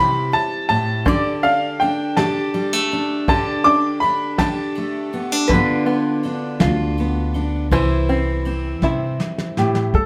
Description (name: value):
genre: acoustic folk duo or small band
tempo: 54 BPM (dotted quarters)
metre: 6/8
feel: straight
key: G mixolydian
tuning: A4 = 441 Hz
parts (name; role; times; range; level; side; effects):
- clear upright piano; melody; 0.0-5.2, 9.6-10.1 s; G4 to D6; -22 LUFS; equal; none
- metal-body resonator slide guitar; second line; 0.0-9.5 s; B4 to E5; -26 LUFS; equal; none
- fingerpicked steel-string acoustic guitar; accompaniment; 0.0-9.9 s; G2 to G4; -24 LUFS; equal; none
- open-back banjo; arpeggios; 0.0-10.0 s; D3 to G4; -28 LUFS; equal; none
- upright bass; bass; 0.0-10.1 s; G1 to G2; -23 LUFS; equal; none
- soft brush drum kit; drums; 0.3-10.1 s; hi-hat, kick drum, ride cymbal, snare drum; -27 LUFS; equal; none
room: moderate studio reverb, RT60 0.8 s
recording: band playing live in one room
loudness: -19 LUFS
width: mono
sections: 0.0-9.9 A section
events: drum fill 8.8-9.9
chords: 0.0 C; 1.1 Gsus2; 5.5 G7; 7.7 C